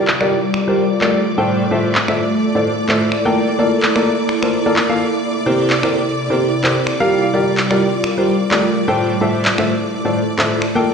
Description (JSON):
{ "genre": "piano house", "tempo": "128 BPM", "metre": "4/4", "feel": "swing 58% on 16ths", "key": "F major", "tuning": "A4 = 438 Hz", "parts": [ { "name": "clear studio violin section", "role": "sustained chords", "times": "0.0-10.9 s", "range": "D5 to D6", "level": "-26 LUFS", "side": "left 2 dB", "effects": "low-pass filter" }, { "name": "clear upright piano", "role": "riff", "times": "0.0-10.9 s", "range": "A2 to G5", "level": "-17 LUFS", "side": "equal", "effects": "low-pass filter, ping-pong delay" }, { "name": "downlifter", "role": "sound effects", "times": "0.0-1.5 s", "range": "none", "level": "-36 LUFS", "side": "left 1 dB", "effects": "none" }, { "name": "ethereal airy pad", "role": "texture", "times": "0.0-10.9 s", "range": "C3 to D5", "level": "-18 LUFS", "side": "right 1 dB", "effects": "ensemble chorus, built-in reverb" }, { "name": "electronic handclaps and finger snaps", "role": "drums", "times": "0.1-10.7 s", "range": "none", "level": "-20 LUFS", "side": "equal", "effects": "low-pass filter on hats, low-pass filter on snare, low-pass filter on room" } ], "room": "moderate lush hall reverb, RT60 2.0 s", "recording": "played on a big sound system in a bare room, stone room reverb", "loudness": "-14 LUFS", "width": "side -6 dB against mid", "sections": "0.0-10.9 A section", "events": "none", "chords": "0.0 Gm7; 1.2 Fmaj7/A; 3.4 Bbmaj7; 5.2 C7; 6.9 Gm7; 8.7 Fmaj7/A" }